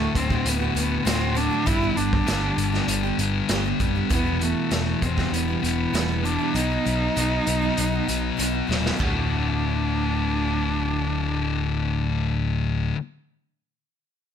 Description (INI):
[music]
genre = quiet-loud alternative rock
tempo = 98 BPM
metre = 4/4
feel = straight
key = D major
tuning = A4 = 442 Hz
[part]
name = warm cello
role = melody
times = 0.0-12.2 s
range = A3 to E4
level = -28 LUFS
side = right 3 dB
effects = slapback echo
[part]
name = picked steel-string acoustic guitar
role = arpeggios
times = 0.0-13.0 s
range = D2 to B4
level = -31 LUFS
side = right 15 dB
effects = none
[part]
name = thick fuzz guitar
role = riff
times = 0.0-13.0 s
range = D2 to F#4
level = -25 LUFS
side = left 8 dB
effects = distortion
[part]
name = overdriven picked electric bass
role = bass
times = 0.0-12.9 s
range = D1 to B1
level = -27 LUFS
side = right 1 dB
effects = none
[part]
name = raw garage drum kit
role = drums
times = 0.2-9.1 s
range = china cymbal, hi-hat, kick drum, snare drum, toms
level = -27 LUFS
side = right 1 dB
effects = none
[sound]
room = light reverb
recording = none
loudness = -21 LUFS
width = side -8 dB against mid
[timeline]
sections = 0.0-9.0 A section; 9.0-11.4 B section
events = drum fill 8.7-9.0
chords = 0.0 D; 1.7 G; 4.1 Em; 6.6 B; 9.0 D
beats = 0.46 1.06 | 1.67 2.28 2.89 3.50 | 4.11 4.72 5.33 5.94 | 6.55 7.17 7.78 8.39 | 9.00 9.61 10.22 10.83